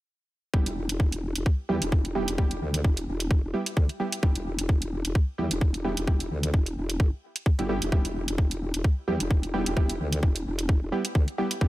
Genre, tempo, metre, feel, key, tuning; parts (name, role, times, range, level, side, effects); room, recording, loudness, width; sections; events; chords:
bass house; 130 BPM; 4/4; swing 55% on 16ths; E minor; A4 = 441 Hz
band-passed chord stab; stabs; 0.5-11.7 s; G3 to G4; -31 LUFS; right 2 dB; chorus, sidechain pumping, dub echo
vowel-sweep wobble bass; bass; 0.5-11.7 s; E1 to E2; -30 LUFS; equal; chorus, overdrive, sidechain pumping
electronic kick drum; drums; 0.5-11.7 s; -22 LUFS; equal; overdrive
electronic hi-hat; drums; 0.7-11.6 s; -32 LUFS; right 2 dB; overdrive
little or no reverb; -24 LUFS; side -17 dB against mid
0.5-11.7 A section
0.5 Em